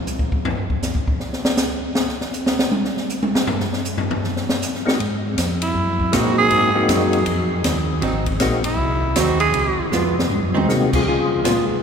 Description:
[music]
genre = soul jazz organ trio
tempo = 158 BPM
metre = 4/4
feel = swing 63% on 8ths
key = unclear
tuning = A4 = 440 Hz
[part]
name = open jazz drum kit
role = drums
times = 0.1-11.6 s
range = crash cymbal, hi-hat, kick drum, ride cymbal, snare drum, toms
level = -21 LUFS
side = equal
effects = none
[part]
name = percussive tonewheel organ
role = melody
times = 4.9-11.7 s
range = Ab3 to Ab4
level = -24 LUFS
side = left 3 dB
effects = slow rotary speaker, chorus vibrato
[part]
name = mellow tonewheel organ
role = bass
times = 5.0-11.8 s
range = Ab1 to Db3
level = -24 LUFS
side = equal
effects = slow rotary speaker
[part]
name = growling tenor saxophone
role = melody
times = 5.6-9.9 s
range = Fb4 to Ab4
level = -22 LUFS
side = right 2 dB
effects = none
[part]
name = archtop guitar, miked and amplified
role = accompaniment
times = 6.1-11.8 s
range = Gb3 to F4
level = -26 LUFS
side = right 3 dB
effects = none
[sound]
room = wet cathedral reverb, RT60 6.8 s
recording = recorded in a church or concert hall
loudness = -17 LUFS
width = side -6 dB against mid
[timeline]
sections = 0.0-11.1 A section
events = tenor saxophone solo 0.0-11.1; drum solo 0.0-5.0; drum fill 9.9-10.7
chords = 0.0 N.C.; 5.0 Ab7; 9.5 Db7; 10.3 Ab7; 11.1 Db7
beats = 0.06 | 0.44 0.82 1.20 1.58 | 1.96 2.34 2.72 3.10 | 3.48 3.86 4.24 4.62 | 5.00 5.37 5.75 6.13 | 6.51 6.89 7.27 7.65 | 8.03 8.41 8.79 9.17 | 9.55 9.93 10.31 10.69 | 11.07 11.45

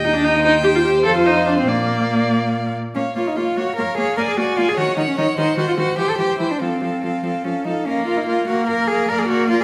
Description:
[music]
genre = quick classical-period movement for string quartet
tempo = 98 BPM (dotted quarters)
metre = 6/8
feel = rubato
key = Bb minor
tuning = A4 = 440 Hz
[part]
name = clear violin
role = melody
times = 0.0-9.6 s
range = D5 to Ab5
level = -29 LUFS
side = equal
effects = none
[part]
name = rich violin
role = second line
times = 0.0-9.6 s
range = A4 to Eb5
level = -28 LUFS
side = equal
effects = none
[part]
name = rich viola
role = accompaniment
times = 0.0-9.6 s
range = Eb3 to A4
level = -22 LUFS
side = equal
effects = none
[part]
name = warm cello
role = bass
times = 0.0-9.6 s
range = Eb2 to Bb4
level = -24 LUFS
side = equal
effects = none
[sound]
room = wet recital hall reverb, RT60 1.5 s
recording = none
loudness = -19 LUFS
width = mono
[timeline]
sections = 0.0-3.0 A section; 3.0-9.6 A section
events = none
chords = 0.4 Cm/Eb; 1.0 F5; 1.7 Bb; 3.0 Bbm; 4.2 Bb7; 4.8 Ebm7; 5.4 Cdim/Eb; 6.0 C; 6.6 F; 7.9 Bbm; 9.1 Bb7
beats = | 0.43 1.05 | 1.68 2.32 | 2.96 3.57 | 4.18 4.77 | 5.38 5.99 | 6.61 7.24 | 7.86 8.48 | 9.09

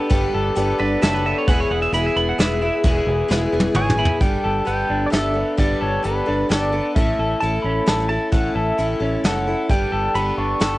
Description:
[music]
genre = folk rock and heartland rock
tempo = 131 BPM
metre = 3/4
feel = straight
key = unclear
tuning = A4 = 440 Hz
[part]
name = picked twelve-string acoustic guitar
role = accompaniment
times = 0.0-10.8 s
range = E2 to A4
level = -25 LUFS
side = left 3 dB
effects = cassette tape
[part]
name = warm upright piano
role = accompaniment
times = 0.0-4.2 s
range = E4 to D5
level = -33 LUFS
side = right 3 dB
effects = none
[part]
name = electric guitar through a small old amp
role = riff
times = 0.0-10.8 s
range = E2 to A4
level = -23 LUFS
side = equal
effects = harmonic tremolo, cassette tape
[part]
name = fingered electric bass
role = bass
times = 0.1-10.8 s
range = E1 to A1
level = -25 LUFS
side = equal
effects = none
[part]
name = soft brush drum kit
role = drums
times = 0.1-10.7 s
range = hi-hat, kick drum, snare drum, toms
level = -20 LUFS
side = equal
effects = cassette tape
[part]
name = pedal steel guitar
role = second line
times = 0.8-4.2 s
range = B4 to C#6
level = -24 LUFS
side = right 3 dB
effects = cassette tape, tape echo
[part]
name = pedal steel guitar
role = melody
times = 3.8-10.8 s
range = B4 to C#6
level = -24 LUFS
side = equal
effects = cassette tape, tape echo
[sound]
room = light reverb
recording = home recording on cassette, nothing above 10.4 kHz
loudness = -17 LUFS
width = side -18 dB against mid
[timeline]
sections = 0.0-4.2 A section; 4.2-10.8 B section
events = pedal steel guitar solo 0.0-4.2; drum fill 3.3-4.2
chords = 0.0 Gadd9; 1.5 E; 4.2 Gadd9; 7.0 A; 9.7 Gadd9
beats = | 0.12 0.57 1.03 | 1.48 1.94 2.39 | 2.85 3.30 3.76 | 4.21 4.67 5.13 | 5.58 6.04 6.50 | 6.96 7.41 7.87 | 8.33 8.78 9.24 | 9.70 10.15 10.61

